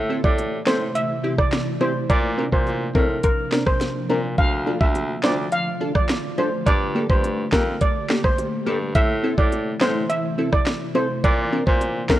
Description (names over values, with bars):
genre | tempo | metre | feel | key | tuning
dancehall | 105 BPM | 4/4 | straight | unclear | A4 = 438 Hz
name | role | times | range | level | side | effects
ethereal airy pad | sustained chords | 0.0-12.2 s | C3 to G4 | -29 LUFS | equal | ensemble chorus, built-in reverb, tremolo, sidechain pumping
warm baritone saxophone | bass | 0.0-12.2 s | D2 to Bb2 | -25 LUFS | equal | none
wavetable chord stab | accompaniment | 0.1-12.2 s | Bb3 to C5 | -26 LUFS | left 1 dB | none
bongos | percussion | 0.1-12.2 s | none | -34 LUFS | right 2 dB | none
steel pan | melody | 0.2-12.2 s | Bb4 to F5 | -24 LUFS | right 1 dB | none
island pop drum kit | drums | 0.2-12.2 s | handclaps, hi-hat, kick drum, rim click, snare drum | -21 LUFS | equal | none
room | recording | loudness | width
light reverb, small room ambience | worn, warbling old tape, cassette tape, warbly pitch drift | -19 LUFS | side -14 dB against mid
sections
0.0-12.2 A section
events
none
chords
0.0 Am; 2.1 Bbadd9; 4.4 Dm; 6.7 Gmadd9; 9.0 Am; 11.2 Bbadd9